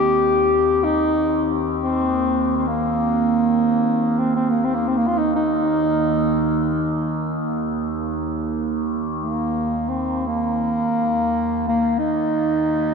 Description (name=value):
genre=world meditative, free-time meditation music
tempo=free time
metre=none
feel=none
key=Eb major pentatonic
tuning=A4 = 440 Hz
part: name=warm bass clarinet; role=melody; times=0.0-12.9 s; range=Bb3 to G4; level=-20 LUFS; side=left 1 dB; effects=ping-pong delay
part: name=overtone-sweeping drone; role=drone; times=0.0-12.9 s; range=Eb2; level=-25 LUFS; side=right 2 dB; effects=chorus, built-in reverb, phaser
part: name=glass harmonica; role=texture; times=0.0-9.0 s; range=Bb3 to C4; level=-26 LUFS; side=right 4 dB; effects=none
room=wet cathedral reverb, RT60 6.2 s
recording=dark, warm production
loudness=-18 LUFS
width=side -5 dB against mid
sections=0.0-12.9 A section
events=none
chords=none